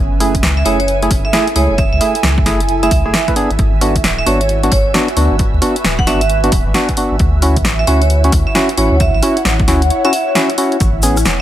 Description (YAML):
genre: UK garage, two-step garage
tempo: 133 BPM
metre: 4/4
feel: swing 63% on 16ths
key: F# minor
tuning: A4 = 440 Hz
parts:
  - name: ethereal airy pad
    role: sustained chords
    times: 0.0-11.4 s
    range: E5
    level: -27 LUFS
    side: right 8 dB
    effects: ensemble chorus, built-in reverb, phaser, sidechain pumping
  - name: saturated sub bass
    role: bass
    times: 0.0-11.4 s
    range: D1 to D2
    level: -16 LUFS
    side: equal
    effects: sidechain pumping
  - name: ethereal airy pad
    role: texture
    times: 0.0-11.4 s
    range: C#4 to G#5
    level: -22 LUFS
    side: equal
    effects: ensemble chorus, built-in reverb, phaser, sidechain pumping
  - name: percussive organ stab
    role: stabs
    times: 0.2-11.2 s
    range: A3 to B4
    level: -17 LUFS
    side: equal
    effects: chorus, dub echo
  - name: punchy analog drum machine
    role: drums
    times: 0.2-11.4 s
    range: hi-hat, rim click, snare drum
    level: -18 LUFS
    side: equal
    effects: none
  - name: electronic kick drum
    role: drums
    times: 0.3-10.9 s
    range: none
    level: -17 LUFS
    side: equal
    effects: none
  - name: vibraphone with hard mallets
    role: melody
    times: 0.6-10.5 s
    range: C#5 to F#5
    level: -20 LUFS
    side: right 4 dB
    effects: vintage 12-bit sampler grit, dub echo
  - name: tube shaker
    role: percussion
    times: 10.8-11.4 s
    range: none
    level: -22 LUFS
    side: left 2 dB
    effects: none
room: light reverb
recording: vinyl crackle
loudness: -11 LUFS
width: side -12 dB against mid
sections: 0.0-10.8 A section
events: none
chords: 0.0 F#m9; 3.4 G#m7b5; 7.2 Dmaj9; 10.8 Amaj9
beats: 0.43 0.88 1.33 | 1.78 2.23 2.69 3.14 | 3.59 4.04 4.49 4.94 | 5.39 5.84 6.30 6.75 | 7.20 7.65 8.10 8.55 | 9.00 9.45 9.90 10.36 | 10.81 11.26